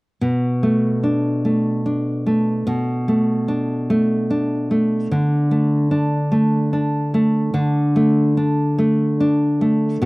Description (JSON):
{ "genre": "pop", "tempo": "49 BPM (dotted quarters)", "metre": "6/8", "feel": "straight", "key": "B minor", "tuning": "A4 = 440 Hz", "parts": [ { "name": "nylon-string guitar", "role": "solo", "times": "0.2-10.1 s", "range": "B2 to F#4", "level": "-16 LUFS", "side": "equal", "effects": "none" } ], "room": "little or no reverb", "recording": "recorded outdoors, with no room sound", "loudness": "-16 LUFS", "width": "side -23 dB against mid", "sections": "0.2-10.0 A section", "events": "none", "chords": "0.2 Bm7; 5.1 D5" }